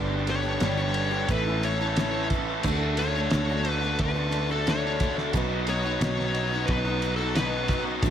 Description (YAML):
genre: folk rock and heartland rock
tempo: 89 BPM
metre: 4/4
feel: straight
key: unclear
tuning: A4 = 440 Hz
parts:
  - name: clear upright piano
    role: accompaniment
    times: 0.0-8.1 s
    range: C#4 to B4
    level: -38 LUFS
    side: right 9 dB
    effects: none
  - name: picked steel-string acoustic guitar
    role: accompaniment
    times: 0.0-8.1 s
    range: G2 to G4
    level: -34 LUFS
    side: left 5 dB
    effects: none
  - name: tonewheel organ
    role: sustained chords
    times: 0.0-8.1 s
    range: D4 to D#6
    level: -39 LUFS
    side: equal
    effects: none
  - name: raw garage guitar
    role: riff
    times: 0.0-8.1 s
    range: G2 to A4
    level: -31 LUFS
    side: right 1 dB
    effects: overdrive, spring reverb
  - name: picked electric bass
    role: bass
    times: 0.0-8.1 s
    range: G1 to D2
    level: -30 LUFS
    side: right 1 dB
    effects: none
  - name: smooth overdriven lead guitar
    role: melody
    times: 0.3-7.8 s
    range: A4 to C#5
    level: -30 LUFS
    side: left 3 dB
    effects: none
  - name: cloth-damped thuddy drum kit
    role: drums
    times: 0.3-8.1 s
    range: crash cymbal, kick drum, ride cymbal, snare drum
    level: -30 LUFS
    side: right 1 dB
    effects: none
room: light reverb, small room ambience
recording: none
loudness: -23 LUFS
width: side -9 dB against mid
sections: 0.0-8.1 A section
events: none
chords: 0.0 G; 1.3 Aadd9; 2.6 D; 5.3 B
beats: 0.61 1.29 1.97 | 2.64 3.32 3.99 4.67 | 5.34 6.02 6.69 7.37 | 8.04